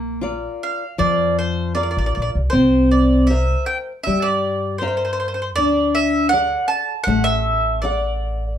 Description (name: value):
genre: italian folk, Italian serenade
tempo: 79 BPM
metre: 4/4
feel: straight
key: unclear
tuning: A4 = 437 Hz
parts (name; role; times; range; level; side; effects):
- nylon-string guitar; accompaniment; 0.0-8.4 s; F3 to F#5; -20 LUFS; left 2 dB; none
- upright bass; bass; 0.0-8.6 s; A1 to G2; -23 LUFS; equal; none
- mandolin; melody; 0.6-8.5 s; C5 to A5; -21 LUFS; right 3 dB; none
room: wet studio reverb, RT60 0.5 s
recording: heard from further back in the room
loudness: -16 LUFS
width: side -9 dB against mid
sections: 0.0-8.6 A section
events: none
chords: 0.0 Bb; 2.5 C7; 5.6 D